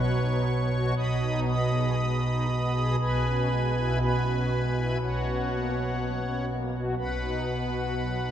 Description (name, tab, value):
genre	classical, chorale-style piece for pipe organ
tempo	60 BPM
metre	4/4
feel	rubato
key	B major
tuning	A4 = 440 Hz
part	pipe organ, strings celeste	solo	0.0-8.3 s	B1 to D#6	-25 LUFS	equal	none
room	wet cathedral reverb, RT60 5.9 s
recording	heard from further back in the room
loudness	-25 LUFS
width	side -10 dB against mid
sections	0.0-8.3 A section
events	none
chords	0.0 B; 1.0 G#m/B; 3.0 C#m7/B; 5.0 F#/B; 7.0 B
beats	0.97 1.98 | 3.00 4.01 5.00 5.99 | 6.98 7.97